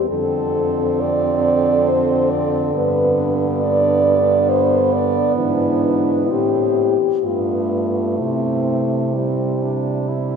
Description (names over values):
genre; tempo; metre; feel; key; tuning
classical, lyrical piece for horn quartet; 62-70 BPM; 3/4; rubato; C major; A4 = 440 Hz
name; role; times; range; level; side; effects
mellow French horn; melody; 0.0-10.1 s; D4 to D5; -19 LUFS; left 1 dB; none
clear French horn; second line; 0.0-10.4 s; B3 to E4; -23 LUFS; right 6 dB; none
clear French horn; bass; 0.0-10.4 s; F2 to C3; -23 LUFS; right 2 dB; none
mellow French horn; accompaniment; 0.1-10.4 s; D3 to A3; -23 LUFS; left 1 dB; none
room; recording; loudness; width
wet cathedral reverb, RT60 6.4 s; minimal, uncompressed stereo recording; -16 LUFS; side -6 dB against mid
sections
0.0-10.4 A section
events
none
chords
0.1 Dm7/F; 2.8 G; 5.4 E7/G#; 6.3 Am; 7.3 G9; 8.2 C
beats
| 0.10 1.01 1.88 | 2.75 3.62 4.50 | 5.37 6.32 7.25 | 8.20 9.15 10.10